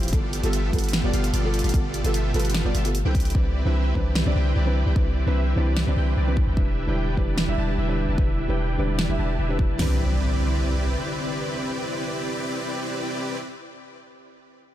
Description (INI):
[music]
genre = future bass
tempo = 149 BPM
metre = 4/4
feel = half-time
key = C major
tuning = A4 = 440 Hz
[part]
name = felt-muted upright piano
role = accompaniment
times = 0.0-13.4 s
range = E3 to E5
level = -30 LUFS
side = right 1 dB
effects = sidechain pumping, ping-pong delay
[part]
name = airy breathy pad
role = sustained chords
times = 0.1-13.4 s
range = B2 to B4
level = -35 LUFS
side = equal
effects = none
[part]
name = dense compressed supersaw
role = riff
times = 0.0-13.4 s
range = B3 to A5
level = -29 LUFS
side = equal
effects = sidechain pumping, low-pass filter, ping-pong delay
[part]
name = long sustained 808-style bass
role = bass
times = 0.0-11.0 s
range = D1 to C2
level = -23 LUFS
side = equal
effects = sidechain pumping
[part]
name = pop drum kit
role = drums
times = 0.0-9.1 s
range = hi-hat, snare drum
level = -28 LUFS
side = right 1 dB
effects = none
[part]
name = pop drum kit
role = drums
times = 0.1-9.9 s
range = hi-hat, kick drum, snare drum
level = -23 LUFS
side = equal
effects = none
[part]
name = impact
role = sound effects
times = 9.9-13.4 s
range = none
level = -34 LUFS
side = equal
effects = none
[sound]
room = little or no reverb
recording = none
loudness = -21 LUFS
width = side -12 dB against mid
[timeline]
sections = 0.0-9.8 A section; 9.8-13.0 B section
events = filter sweep on 808-style bass 0.0-9.8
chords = 0.1 G9; 3.1 Cmaj9; 6.6 Em7; 9.8 Cmaj9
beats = | 0.13 0.53 0.93 1.34 | 1.74 2.14 2.54 2.95 | 3.35 3.75 4.15 4.56 | 4.96 5.36 5.76 6.17 | 6.57 6.97 7.38 7.78 | 8.18 8.58 8.99 9.39 | 9.79 10.20 10.60 11.00 | 11.40 11.80 12.21 12.61